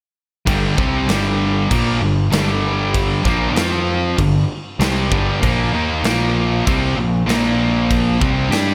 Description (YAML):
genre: hard rock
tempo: 97 BPM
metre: 4/4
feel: straight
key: G minor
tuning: A4 = 441 Hz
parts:
  - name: sludgy distorted guitar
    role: riff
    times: 0.5-8.7 s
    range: G2 to G4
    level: -22 LUFS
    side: equal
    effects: overdrive
  - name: tight distorted guitar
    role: riff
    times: 0.5-8.7 s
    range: G2 to G4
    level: -24 LUFS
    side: equal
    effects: distortion
  - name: fuzz picked electric bass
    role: bass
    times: 0.5-8.7 s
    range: G1 to G2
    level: -23 LUFS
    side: equal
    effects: overdrive
  - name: big rock drum kit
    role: drums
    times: 0.5-8.7 s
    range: crash cymbal, kick drum, snare drum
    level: -24 LUFS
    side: equal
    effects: gated reverb
room: moderate lush hall reverb, RT60 2.3 s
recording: bright 1980s-style digital production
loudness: -17 LUFS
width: mono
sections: 0.5-8.7 A section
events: none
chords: 0.5 Gm; 3.6 F5; 4.2 G5; 5.4 Bb5